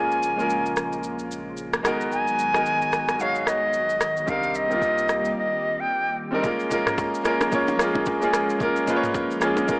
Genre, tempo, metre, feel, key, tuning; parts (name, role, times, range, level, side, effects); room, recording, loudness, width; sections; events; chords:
amapiano; 111 BPM; 4/4; swing 58% on 16ths; A4 = 443 Hz
bright silver concert flute; melody; 0.0-6.2 s; Eb5 to Ab5; -23 LUFS; equal; low-pass filter
clear baby grand piano; accompaniment; 0.0-9.8 s; G3 to Db5; -24 LUFS; equal; low-pass filter
hollow soft pad; sustained chords; 0.0-9.8 s; Db3 to Ab4; -35 LUFS; equal; ensemble chorus, sidechain pumping, low-pass filter
punchy sub bass; bass; 0.0-5.3 s; Ab1 to C2; -43 LUFS; equal
smooth R&B drum kit; drums; 0.1-9.8 s; kick drum, rim click, shaker, toms; -28 LUFS; equal
congas and bongos; percussion; 6.4-9.8 s; -32 LUFS; equal
moderate plate reverb, RT60 2.1 s; small speaker sound; -21 LUFS; side -34 dB against mid
0.0-6.4 A section; 6.4-9.8 B section
break 5.4-6.4
0.0 Bbm7; 1.8 Abm7; 4.3 Cm7; 6.4 Bbm7